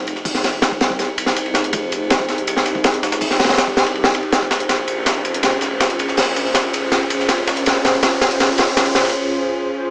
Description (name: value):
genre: drum and bass, jungle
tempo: 162 BPM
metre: 4/4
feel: straight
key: F minor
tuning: A4 = 439 Hz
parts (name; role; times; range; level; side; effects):
- detuned saw bass; bass; 0.0-9.1 s; F1 to C2; -27 LUFS; equal; high-pass filter
- riser; sound effects; 3.3-9.1 s; none; -29 LUFS; equal; none
- breakbeat sampler-style drum kit; drums; 0.1-9.1 s; hi-hat, snare drum, tambourine; -24 LUFS; equal; high-pass filter on perc, high-pass filter on snare, high-pass filter on hats
- crunchy breakbeat drum kit; drums; 0.1-9.1 s; hi-hat, kick drum, ride cymbal, snare drum; -17 LUFS; equal; high-pass filter on kick, high-pass filter on cymbals, high-pass filter on hats, high-pass filter on snare, high-pass filter on room
room: light reverb, small room ambience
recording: small speaker sound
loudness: -15 LUFS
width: side -30 dB against mid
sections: 0.0-9.9 A section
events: build-up 0.0-9.9; drum fill 4.7-9.1; break 9.1-9.9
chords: none